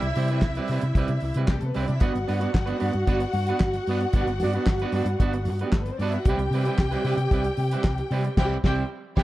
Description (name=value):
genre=disco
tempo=113 BPM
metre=4/4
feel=straight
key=G major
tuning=A4 = 443 Hz
part: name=warm studio string section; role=second line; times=0.0-9.2 s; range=G3 to G5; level=-29 LUFS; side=left 1 dB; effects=none
part: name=electric guitar at the edge of break-up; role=accompaniment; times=0.0-9.2 s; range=G3 to D5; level=-30 LUFS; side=right 5 dB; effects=spring reverb
part: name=hollow-body short-scale fingered electric bass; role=bass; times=0.0-9.2 s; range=G1 to C3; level=-26 LUFS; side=equal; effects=none
part: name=damped 70s drum kit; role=drums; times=0.0-9.2 s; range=crash cymbal, handclaps, hi-hat, kick drum, snare drum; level=-23 LUFS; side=equal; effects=none
room=light reverb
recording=dark, warm production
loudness=-22 LUFS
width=side -16 dB against mid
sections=0.0-9.2 A section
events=band accent 8.4-9.2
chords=0.0 Cmaj7; 2.0 Gmaj7; 6.3 Cmaj7